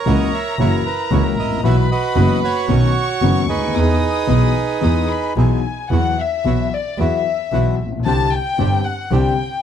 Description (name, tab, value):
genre	tango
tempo	113 BPM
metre	4/4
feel	rubato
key	E major, E minor from 5.9 s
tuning	A4 = 440 Hz
part	bandoneon	melody	0.0-5.3 s	D#4 to E5	-21 LUFS	right 8 dB	none
part	warm chamber violin section	second line	0.0-9.6 s	D5 to D#6	-23 LUFS	left 6 dB	none
part	warm concert grand piano	accompaniment	0.1-9.3 s	F#1 to G#4	-20 LUFS	left 8 dB	none
part	bandoneon	stabs	0.1-9.3 s	G#3 to G4	-31 LUFS	right 6 dB	none
part	clear double bass	bass	0.1-9.3 s	F#1 to E2	-18 LUFS	right 3 dB	none
room	small room reverb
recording	dry, close 1970s-style studio recording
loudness	-15 LUFS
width	side -9 dB against mid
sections	0.0-5.9 A section; 5.9-9.6 B section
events	violin section solo 5.9-9.6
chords	0.0 F#7; 1.6 Bsus4; 2.7 Badd9; 3.7 Emaj7; 5.9 Esus2; 8.1 Csus2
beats	0.06 0.59 1.12 | 1.64 2.16 2.69 3.22 | 3.75 4.28 4.82 5.37 | 5.91 6.45 6.99 7.53 | 8.06 8.59 9.11